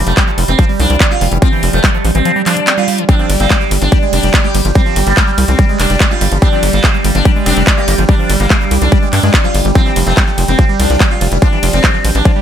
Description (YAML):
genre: psychedelic trance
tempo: 144 BPM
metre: 4/4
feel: straight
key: G minor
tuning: A4 = 440 Hz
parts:
  - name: overtone-sweeping drone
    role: sustained chords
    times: 0.0-12.4 s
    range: G3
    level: -20 LUFS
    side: right 3 dB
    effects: chorus, built-in reverb, sidechain pumping
  - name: liquid acid bass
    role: riff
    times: 0.0-12.4 s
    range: E3 to D4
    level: -19 LUFS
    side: moving between left 4 dB and right 2 dB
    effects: phaser, auto-pan, sidechain pumping, tape echo
  - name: tight sequencer bass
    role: bass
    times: 0.0-12.2 s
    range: F1 to G2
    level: -14 LUFS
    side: equal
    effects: none
  - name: sitar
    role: melody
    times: 0.1-12.4 s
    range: G3 to G4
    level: -17 LUFS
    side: left 1 dB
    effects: phaser, sidechain pumping, tape echo
  - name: big-room dance drum kit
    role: drums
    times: 0.1-12.3 s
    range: handclaps, hi-hat, ride cymbal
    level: -17 LUFS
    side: equal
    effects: none
  - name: electronic kick drum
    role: drums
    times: 0.2-12.3 s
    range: none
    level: -11 LUFS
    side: equal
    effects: none
  - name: metallic wobble bass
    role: second line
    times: 3.1-3.6, 6.4-10.2 s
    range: Bb3 to C4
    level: -27 LUFS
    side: right 4 dB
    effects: chorus, sidechain pumping, high-pass filter, tape echo
room: little or no reverb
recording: none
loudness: -9 LUFS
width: side -9 dB against mid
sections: 0.0-12.4 A section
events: none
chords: 0.0 F5; 3.1 G5; 9.8 F5